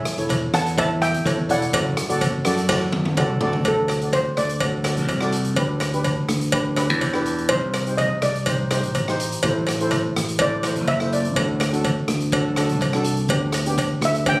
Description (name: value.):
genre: calypso.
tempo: 124 BPM.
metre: 4/4.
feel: straight.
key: unclear.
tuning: A4 = 439 Hz.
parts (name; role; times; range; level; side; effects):
steel pan; melody; 0.0-14.4 s; A4 to A5; -23 LUFS; equal; none.
steel pan; accompaniment; 0.0-14.4 s; B3 to D5; -26 LUFS; equal; none.
street-band drum kit; drums; 0.1-14.4 s; hi-hat, kick drum, rim click, snare drum, toms; -26 LUFS; equal; none.
modern bright fingered electric bass; bass; 0.2-14.4 s; E1 to F#2; -24 LUFS; equal; none.
cowbell; percussion; 0.3-14.4 s; none; -25 LUFS; equal; none.
room: light reverb.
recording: recorded on a phone in the room, studio reverb, compression.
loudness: -19 LUFS.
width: side -22 dB against mid.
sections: 0.0-3.7 A section; 3.7-14.4 B section.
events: drum fill 2.7-3.7; steel pan solo 3.7-14.4.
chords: 0.0 A7/E; 1.7 D/F#; 3.7 D; 5.6 G/D; 7.5 Cmadd9; 9.4 Am; 11.4 D; 13.3 G/D.